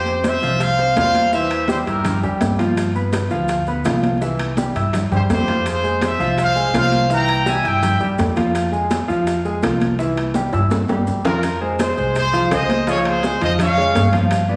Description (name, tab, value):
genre	latin, salsa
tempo	166 BPM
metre	4/4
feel	straight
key	F minor from 11.4 s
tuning	A4 = 438 Hz
part	bright trumpet section	melody	0.0-2.2, 5.1-8.0, 11.3-14.1 s	F4 to Bb5	-22 LUFS	equal	none
part	upright bass	bass	0.0-14.6 s	C2 to G2	-25 LUFS	equal	none
part	clear grand piano	accompaniment	0.1-14.6 s	E3 to E6	-24 LUFS	equal	none
part	congas	percussion	0.1-14.6 s	none	-26 LUFS	equal	none
part	maracas	percussion	0.1-14.5 s	none	-43 LUFS	equal	none
part	bongos	percussion	0.2-14.6 s	none	-34 LUFS	equal	none
part	timbales	percussion	0.2-14.5 s	none	-30 LUFS	equal	none
room	wet large studio reverb, RT60 1.2 s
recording	vinyl crackle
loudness	-18 LUFS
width	mono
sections	0.0-11.4 A section; 11.4-14.6 B section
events	drum fill 10.5-11.4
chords	0.0 Fsus2; 1.3 C7/E; 2.8 G7; 4.2 C; 5.7 Fm; 7.1 C; 8.6 Fm; 10.0 C; 11.4 Fm; 12.9 Dbmaj7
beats	0.24 0.60 0.96 | 1.32 1.68 2.04 2.41 | 2.77 3.13 3.49 3.85 | 4.21 4.58 4.94 5.30 | 5.66 6.02 6.38 6.74 | 7.11 7.47 7.83 8.19 | 8.55 8.91 9.27 9.63 | 9.99 10.35 10.71 11.07 | 11.44 11.79 12.15 12.51 | 12.87 13.23 13.59 13.95 | 14.31